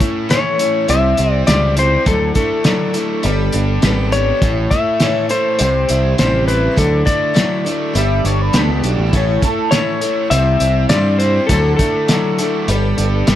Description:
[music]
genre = folk rock and heartland rock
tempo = 102 BPM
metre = 4/4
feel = straight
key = unclear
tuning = A4 = 444 Hz
[part]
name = picked steel-string acoustic guitar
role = accompaniment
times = 0.0-13.4 s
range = A2 to C#5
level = -21 LUFS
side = left 2 dB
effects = none
[part]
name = overdriven electric guitar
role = riff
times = 0.0-13.4 s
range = A2 to E4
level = -22 LUFS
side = right 2 dB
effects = none
[part]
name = cloth-damped thuddy drum kit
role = drums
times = 0.0-13.4 s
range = hi-hat, kick drum, snare drum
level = -18 LUFS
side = equal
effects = none
[part]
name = clean lap steel guitar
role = melody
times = 0.3-13.4 s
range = A4 to E5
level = -18 LUFS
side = left 3 dB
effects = analog delay
[part]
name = picked electric bass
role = bass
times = 0.9-13.4 s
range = G1 to G2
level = -16 LUFS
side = equal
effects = none
[part]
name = electric guitar through a small old amp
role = second line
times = 8.0-9.7 s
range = C#4 to E5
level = -22 LUFS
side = right 3 dB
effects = analog chorus
[part]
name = mellow tonewheel organ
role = sustained chords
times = 9.1-13.4 s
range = G4 to E6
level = -31 LUFS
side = right 1 dB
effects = slow rotary speaker
[sound]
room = light reverb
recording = dark, warm production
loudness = -13 LUFS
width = side -12 dB against mid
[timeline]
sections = 0.0-13.4 A section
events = none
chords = 0.0 A; 0.9 C; 2.1 Dadd9; 3.2 Gadd9; 4.4 A; 5.6 C; 6.8 Dadd9; 8.0 Gadd9; 9.1 A; 10.3 C; 11.5 Dadd9; 12.7 Gadd9

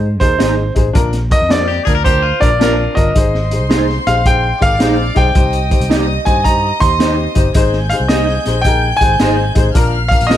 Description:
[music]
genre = uptempo 1960s-style soul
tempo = 109 BPM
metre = 4/4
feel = swing 65% on 8ths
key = unclear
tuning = A4 = 440 Hz
[part]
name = warm upright piano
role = accompaniment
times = 0.0-10.4 s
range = D4 to D5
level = -20 LUFS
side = left 5 dB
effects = none
[part]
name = fingered electric bass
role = bass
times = 0.0-10.4 s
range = G1 to Ab2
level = -18 LUFS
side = equal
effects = none
[part]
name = clear concert grand piano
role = melody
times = 0.2-10.4 s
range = C5 to C6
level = -16 LUFS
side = equal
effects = slapback echo
[part]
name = crunchy breakbeat drum kit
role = drums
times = 0.2-10.4 s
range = hi-hat, kick drum, snare drum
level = -16 LUFS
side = equal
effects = none
[part]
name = mellow electric guitar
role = stabs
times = 0.4-10.4 s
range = D4 to Eb5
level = -20 LUFS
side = right 6 dB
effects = ensemble chorus, slapback echo
[part]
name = electric guitar at the edge of break-up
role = riff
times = 1.7-3.0 s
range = F4 to Bb4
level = -21 LUFS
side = left 8 dB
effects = none
[part]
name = warm horn section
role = second line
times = 1.9-3.1 s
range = F3 to Bb4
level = -21 LUFS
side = right 1 dB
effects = none
[part]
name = warm symphonic string section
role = second line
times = 3.2-10.4 s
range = C5 to G6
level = -23 LUFS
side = equal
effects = none
[sound]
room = light reverb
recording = none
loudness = -11 LUFS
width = side -11 dB against mid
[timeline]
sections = 0.0-10.4 A section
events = band accent 1.0-3.2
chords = 0.0 Ab; 1.0 Bb; 3.2 Ab; 5.4 Cm; 7.6 Ab; 9.8 Bb

